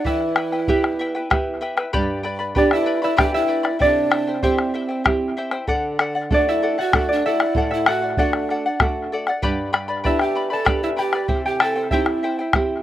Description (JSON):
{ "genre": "andean folk, Andean ensemble", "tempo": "96 BPM", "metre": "3/4", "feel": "straight", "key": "unclear", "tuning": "A4 = 440 Hz", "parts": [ { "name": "concert harp", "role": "melody", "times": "0.0-12.8 s", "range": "C5 to A5", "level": "-22 LUFS", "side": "left 1 dB", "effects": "slapback echo" }, { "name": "breathy pan flute", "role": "second line", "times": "0.0-12.8 s", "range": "C4 to A4", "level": "-25 LUFS", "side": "right 4 dB", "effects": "slapback echo" }, { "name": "charango", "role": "accompaniment", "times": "0.0-12.8 s", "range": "E4 to B5", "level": "-26 LUFS", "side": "left 2 dB", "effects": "slapback echo" }, { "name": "nylon-string guitar", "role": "accompaniment", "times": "0.0-12.8 s", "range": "G2 to G4", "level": "-26 LUFS", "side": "right 3 dB", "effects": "slapback echo" }, { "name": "bombo", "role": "percussion", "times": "0.1-12.7 s", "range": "none", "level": "-20 LUFS", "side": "left 1 dB", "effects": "none" } ], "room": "light reverb", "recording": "recorded outdoors, with no room sound", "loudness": "-18 LUFS", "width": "side -13 dB against mid", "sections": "0.0-1.9 A section; 1.9-12.8 A section", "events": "none", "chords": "0.1 Em; 1.9 G; 3.8 C; 5.7 D; 9.4 G; 11.3 C" }